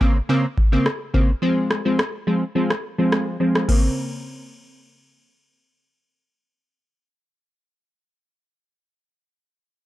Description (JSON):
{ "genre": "dancehall", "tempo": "106 BPM", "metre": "4/4", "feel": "straight", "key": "Bb minor", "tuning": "A4 = 440 Hz", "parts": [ { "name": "wavetable chord stab", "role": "accompaniment", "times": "0.0-7.4 s", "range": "Db3 to C4", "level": "-20 LUFS", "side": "equal", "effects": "low-pass filter" }, { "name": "booming analog drum machine", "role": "drums", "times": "0.0-3.9 s", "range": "crash cymbal, kick drum, rim click", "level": "-21 LUFS", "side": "equal", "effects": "overdrive" } ], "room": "little or no reverb", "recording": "dry, gritty hardware recording", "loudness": "-18 LUFS", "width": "side -15 dB against mid", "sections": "0.0-3.7 A section; 3.7-6.0 B section", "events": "filter sweep on synth stab 0.0-3.7", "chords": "0.0 Bbmadd9; 1.4 Fm; 3.7 Bbmadd9", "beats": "0.29 0.86 | 1.42 1.99 2.56 3.12 | 3.69 4.25 4.82 5.38" }